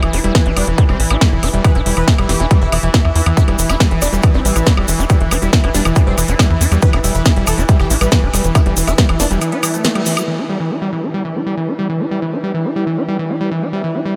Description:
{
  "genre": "psychedelic trance",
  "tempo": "139 BPM",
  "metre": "4/4",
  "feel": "straight",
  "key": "E minor",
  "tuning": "A4 = 437 Hz",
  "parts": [
    { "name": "supersaw stab", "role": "melody", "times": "0.0-10.2 s", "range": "E3 to B4", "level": "-26 LUFS", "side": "equal", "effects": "phaser, sidechain pumping, analog delay" },
    { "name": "bubbling stepped-filter texture", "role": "sustained chords", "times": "0.0-14.2 s", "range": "E3", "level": "-26 LUFS", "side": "equal", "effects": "chorus, built-in reverb, sidechain pumping" },
    { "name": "overdriven acid bass", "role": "riff", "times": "0.0-14.1 s", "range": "E3 to E4", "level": "-22 LUFS", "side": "equal", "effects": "distortion, sidechain pumping, analog delay" },
    { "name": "tight sequencer bass", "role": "bass", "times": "0.0-9.4 s", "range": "E1 to E2", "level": "-19 LUFS", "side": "equal", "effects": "none" },
    { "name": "drum and bass drum kit", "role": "drums", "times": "0.0-14.1 s", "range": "hi-hat, snare drum, woodblock", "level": "-23 LUFS", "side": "equal", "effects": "low-pass filter on hats, low-pass filter on cymbals, low-pass filter on perc, low-pass filter on snare, low-pass filter on room" },
    { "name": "electronic kick drum", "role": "drums", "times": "0.3-9.1 s", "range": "none", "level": "-15 LUFS", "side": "equal", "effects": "none" },
    { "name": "tube shaker", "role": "percussion", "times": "3.4-10.3 s", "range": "none", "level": "-27 LUFS", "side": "equal", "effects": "none" }
  ],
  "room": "light reverb, digital ambience",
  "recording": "none",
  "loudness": "-15 LUFS",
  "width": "mono",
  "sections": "0.0-10.3 A section; 10.3-14.2 B section",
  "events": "band accent 9.8",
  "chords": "0.0 Em"
}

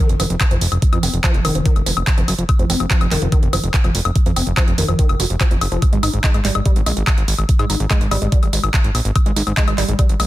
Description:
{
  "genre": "psychedelic trance",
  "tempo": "144 BPM",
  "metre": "4/4",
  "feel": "straight",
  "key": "F minor",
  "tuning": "A4 = 441 Hz",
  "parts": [
    { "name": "woody wave-folded pluck", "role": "riff", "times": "0.0-10.2 s", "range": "Eb3 to Gb4", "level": "-24 LUFS", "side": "equal", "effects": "chorus, auto-pan, cassette tape, sidechain pumping, digital delay" },
    { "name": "fat analog bass", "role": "bass", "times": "0.1-10.3 s", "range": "F1 to Ab2", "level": "-20 LUFS", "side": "equal", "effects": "none" },
    { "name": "techno drum kit", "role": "drums", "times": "0.1-10.3 s", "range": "handclaps, hi-hat, woodblock", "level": "-22 LUFS", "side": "left 1 dB", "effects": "none" },
    { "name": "electronic kick drum", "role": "drums", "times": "0.4-10.1 s", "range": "none", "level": "-16 LUFS", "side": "equal", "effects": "overdrive" }
  ],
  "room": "little or no reverb",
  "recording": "dense, heavily limited modern master",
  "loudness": "-14 LUFS",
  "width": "side -15 dB against mid",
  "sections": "0.0-10.3 A section",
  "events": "none",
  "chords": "0.0 F5; 5.8 Ab5"
}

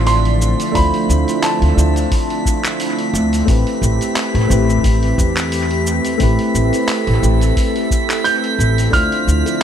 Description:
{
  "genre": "sunset chillout",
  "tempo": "88 BPM",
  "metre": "4/4",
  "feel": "swing 55% on 16ths",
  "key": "D dorian",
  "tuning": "A4 = 440 Hz",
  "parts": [
    { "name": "warm grand piano", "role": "melody", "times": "0.0-2.8, 8.2-9.6 s", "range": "A5 to G6", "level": "-22 LUFS", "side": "right 2 dB", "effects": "dub echo" },
    { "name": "soft electric-piano-like synth keys", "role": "accompaniment", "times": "0.0-9.6 s", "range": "A3 to C5", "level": "-20 LUFS", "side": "moving between left 4 dB and right 6 dB", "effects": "chorus, auto-pan, low-pass filter, dub echo" },
    { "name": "airy breathy pad", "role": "sustained chords", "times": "0.0-9.6 s", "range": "D3 to D5", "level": "-22 LUFS", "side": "left 1 dB", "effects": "chorus" },
    { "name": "upright bass", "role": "bass", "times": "0.0-9.4 s", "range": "A1 to E2", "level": "-16 LUFS", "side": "equal", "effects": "none" },
    { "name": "drifting glass-harmonics texture", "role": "texture", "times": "0.0-9.6 s", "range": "B6", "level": "-27 LUFS", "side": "equal", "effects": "chorus, built-in reverb" },
    { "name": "dusty soul sampler-style drum kit", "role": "drums", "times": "0.1-9.6 s", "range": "handclaps, hi-hat, shaker", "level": "-25 LUFS", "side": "equal", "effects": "analog delay" },
    { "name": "electronic kick drum", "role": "drums", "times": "0.8-9.1 s", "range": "none", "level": "-18 LUFS", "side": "equal", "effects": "overdrive" },
    { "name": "bongos", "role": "percussion", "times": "9.5-9.6 s", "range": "none", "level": "-30 LUFS", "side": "left 9 dB", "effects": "none" }
  ],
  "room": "light reverb, digital ambience",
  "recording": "echo-heavy mix",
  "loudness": "-13 LUFS",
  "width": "side -9 dB against mid",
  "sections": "0.0-9.6 A section",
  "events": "none",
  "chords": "0.0 Dm7; 3.5 Am7; 8.9 Dm7"
}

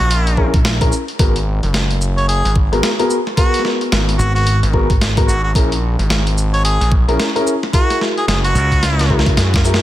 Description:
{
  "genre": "glitch hop",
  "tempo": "110 BPM",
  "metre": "4/4",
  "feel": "swing 60% on 16ths",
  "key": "G# minor",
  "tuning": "A4 = 440 Hz",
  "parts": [
    { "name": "warm harmonica", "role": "melody", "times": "0.0-9.2 s", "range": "F#4 to C#5", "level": "-22 LUFS", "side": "equal", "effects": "dub echo" },
    { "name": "dark concert grand piano", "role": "stabs", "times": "0.0-9.8 s", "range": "B3 to A#4", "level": "-20 LUFS", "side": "left 2 dB", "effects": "sidechain pumping, dub echo" },
    { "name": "gritty driven synth bass", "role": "bass", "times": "0.0-9.8 s", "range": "F#1 to F#2", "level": "-16 LUFS", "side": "equal", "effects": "none" },
    { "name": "boom bap sampler-style drum kit", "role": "drums", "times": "0.0-9.8 s", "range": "hi-hat, shaker, snare drum", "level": "-20 LUFS", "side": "equal", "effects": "none" },
    { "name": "electronic kick drum", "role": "drums", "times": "0.4-9.6 s", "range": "none", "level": "-15 LUFS", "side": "equal", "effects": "overdrive" },
    { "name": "modern bright fingered electric bass", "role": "bass", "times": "0.5-0.9, 4.2-5.3, 8.6-9.4 s", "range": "G#1 to C#2", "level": "-16 LUFS", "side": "equal", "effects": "none" }
  ],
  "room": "little or no reverb",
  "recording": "none",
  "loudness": "-13 LUFS",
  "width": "side -14 dB against mid",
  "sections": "0.0-9.8 A section",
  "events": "drum fill 8.8-9.8",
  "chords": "0.0 A#m7b5; 1.2 G#m9; 5.6 A#m7b5; 7.7 F#9"
}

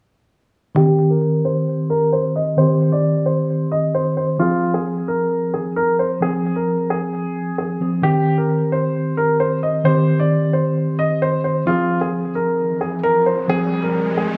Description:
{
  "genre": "hip hop",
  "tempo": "132 BPM",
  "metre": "4/4",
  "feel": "half-time",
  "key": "C minor",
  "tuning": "A4 = 439 Hz",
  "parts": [
    { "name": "tine electric piano", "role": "accompaniment", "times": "0.7-14.4 s", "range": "Eb3 to Ab4", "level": "-21 LUFS", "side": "equal", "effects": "low-pass filter" },
    { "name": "dark baby grand piano", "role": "melody", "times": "0.8-14.4 s", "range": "F4 to Eb5", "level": "-22 LUFS", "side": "equal", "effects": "low-pass filter, tape echo" },
    { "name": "riser", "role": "sound effects", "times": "12.6-14.4 s", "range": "none", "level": "-31 LUFS", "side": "equal", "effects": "none" }
  ],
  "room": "moderate booth ambience, RT60 0.2 s",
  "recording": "studio reverb",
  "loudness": "-19 LUFS",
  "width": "mono",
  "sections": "0.8-14.4 A section",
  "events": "filter sweep 0.8-14.4; riser 12.6-14.4",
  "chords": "0.8 Cm; 4.4 Fm; 8.0 Cm; 11.7 Fm"
}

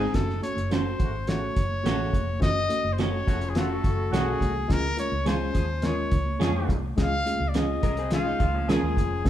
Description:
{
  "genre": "uptempo 1960s-style soul",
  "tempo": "105 BPM",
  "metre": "4/4",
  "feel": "straight",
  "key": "Db major",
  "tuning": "A4 = 441 Hz",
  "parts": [
    { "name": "clear trumpet", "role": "melody", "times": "0.0-9.3 s", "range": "Ab4 to F5", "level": "-30 LUFS", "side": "left 2 dB", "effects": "none" },
    { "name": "tine electric piano", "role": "accompaniment", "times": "0.0-9.3 s", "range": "Ab3 to Db5", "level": "-32 LUFS", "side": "left 2 dB", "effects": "none" },
    { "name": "electric guitar at the edge of break-up", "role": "stabs", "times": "0.0-8.8 s", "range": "Ab3 to A4", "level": "-32 LUFS", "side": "right 4 dB", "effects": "none" },
    { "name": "vintage muted fingered electric bass", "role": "bass", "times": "0.0-9.3 s", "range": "F1 to F2", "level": "-30 LUFS", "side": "equal", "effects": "none" },
    { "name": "cloth-damped thuddy drum kit", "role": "drums", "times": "0.1-9.3 s", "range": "hi-hat, kick drum, snare drum", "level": "-27 LUFS", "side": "equal", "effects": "none" },
    { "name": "congas", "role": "percussion", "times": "0.1-9.1 s", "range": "none", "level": "-39 LUFS", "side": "right 4 dB", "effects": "none" },
    { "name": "mellow horn section", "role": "second line", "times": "1.0-9.1 s", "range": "Db3 to Ab4", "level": "-37 LUFS", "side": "right 2 dB", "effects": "none" },
    { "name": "electric guitar through a small old amp", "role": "riff", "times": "3.3-9.2 s", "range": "F3 to Bb4", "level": "-33 LUFS", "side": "left 4 dB", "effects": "none" }
  ],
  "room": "moderate large studio reverb, RT60 1.3 s",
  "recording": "band playing live in one room",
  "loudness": "-23 LUFS",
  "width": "side -11 dB against mid",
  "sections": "0.1-9.3 A section",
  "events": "none",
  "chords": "0.1 Gbm; 4.7 Db"
}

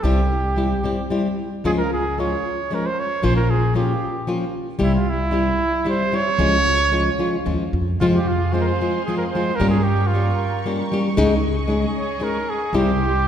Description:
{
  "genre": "mexican folk, mariachi",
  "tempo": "113 BPM",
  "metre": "3/4",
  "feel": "rubato",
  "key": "unclear",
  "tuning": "A4 = 444 Hz",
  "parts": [
    { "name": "mellow trumpet", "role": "melody", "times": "0.0-13.3 s", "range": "E4 to Db5", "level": "-23 LUFS", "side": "right 3 dB", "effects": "none" },
    { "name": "flamenco guitar", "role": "accompaniment", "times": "0.0-12.9 s", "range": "F2 to Ab4", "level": "-21 LUFS", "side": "left 2 dB", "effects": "none" },
    { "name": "upright bass", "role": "bass", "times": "0.0-13.3 s", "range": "Bb1 to G2", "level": "-23 LUFS", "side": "equal", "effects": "none" },
    { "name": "muted symphonic violin section", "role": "sustained chords", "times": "8.0-13.3 s", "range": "G4 to Db6", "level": "-32 LUFS", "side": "equal", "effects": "none" }
  ],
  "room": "wet scoring stage reverb, RT60 1.9 s",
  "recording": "heard from further back in the room",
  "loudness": "-18 LUFS",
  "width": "side -9 dB against mid",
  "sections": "0.0-13.3 A section",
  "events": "none",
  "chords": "0.0 C; 1.6 Db; 3.2 Bbm; 4.8 C; 6.4 Db; 8.0 Fm; 9.6 Gdim; 11.2 Dbsus2; 12.7 C"
}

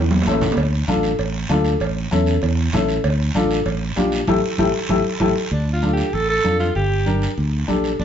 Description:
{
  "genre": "latin, cumbia",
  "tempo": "194 BPM",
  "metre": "4/4",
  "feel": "straight",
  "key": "unclear",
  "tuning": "A4 = 441 Hz",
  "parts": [
    { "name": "fingered electric bass", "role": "bass", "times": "0.0-8.0 s", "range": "G1 to F2", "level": "-21 LUFS", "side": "right 1 dB", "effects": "none" },
    { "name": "timbales and cowbell", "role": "percussion", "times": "0.0-5.3 s", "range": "none", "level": "-27 LUFS", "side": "right 3 dB", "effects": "none" },
    { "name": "congas", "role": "percussion", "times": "0.1-8.0 s", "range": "none", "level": "-25 LUFS", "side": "equal", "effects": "none" },
    { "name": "warm upright piano", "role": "accompaniment", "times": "0.3-7.9 s", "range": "C#4 to Bb4", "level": "-22 LUFS", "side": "left 4 dB", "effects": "none" },
    { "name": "guiro", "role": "percussion", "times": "0.3-8.0 s", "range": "none", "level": "-32 LUFS", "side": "right 3 dB", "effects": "none" },
    { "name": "bright alto saxophone", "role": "melody", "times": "5.5-8.0 s", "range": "D4 to A4", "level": "-21 LUFS", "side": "right 2 dB", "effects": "slapback echo" }
  ],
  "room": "wet studio reverb, RT60 0.8 s",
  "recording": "heard from further back in the room, nothing above 7.7 kHz",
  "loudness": "-17 LUFS",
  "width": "side -8 dB against mid",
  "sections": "0.0-5.5 A section; 5.5-8.0 B section",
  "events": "drum fill 0.0-0.6, 4.7-5.5; band accent 4.3-5.5",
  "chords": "0.0 A; 0.6 Dm; 1.8 A; 3.0 Dm; 4.3 A5; 5.5 Dm; 6.8 Gm"
}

